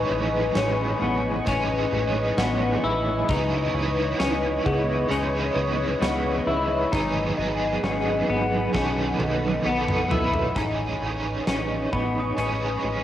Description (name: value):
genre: dream pop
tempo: 66 BPM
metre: 4/4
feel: straight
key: unclear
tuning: A4 = 439 Hz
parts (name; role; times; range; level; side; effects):
- biting overdriven guitar; accompaniment; 0.0-13.0 s; G#2 to A4; -27 LUFS; right 3 dB; tremolo, ensemble chorus, cassette tape
- warbly tape-like pad; sustained chords; 0.0-13.0 s; G#4 to C#6; -28 LUFS; left 2 dB; chorus, built-in reverb, phaser, cassette tape
- semi-hollow electric guitar; arpeggios; 0.0-13.0 s; B3 to E4; -28 LUFS; left 3 dB; analog chorus, cassette tape, tape echo
- plucky analog bass; bass; 0.0-13.0 s; G#1 to C#2; -29 LUFS; equal; none
- synth chime; texture; 0.0-13.0 s; G#4 to D#6; -35 LUFS; left 1 dB; ensemble chorus, cassette tape, tape echo
- huge arena drum kit; drums; 0.6-12.6 s; hi-hat, kick drum, snare drum, tambourine, toms; -32 LUFS; equal; none
room: light reverb, small room ambience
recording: home recording on cassette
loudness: -22 LUFS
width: side -11 dB against mid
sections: 0.0-10.6 A section; 10.6-13.0 B section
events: drum fill 8.7-10.6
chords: 0.0 Amaj9#11; 3.3 C#m9; 6.9 G#m7; 8.7 B7; 10.6 Amaj9#11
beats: 0.56 1.47 2.38 | 3.29 4.20 5.11 6.02 | 6.92 7.83 8.74 9.65 | 10.56 11.47 12.38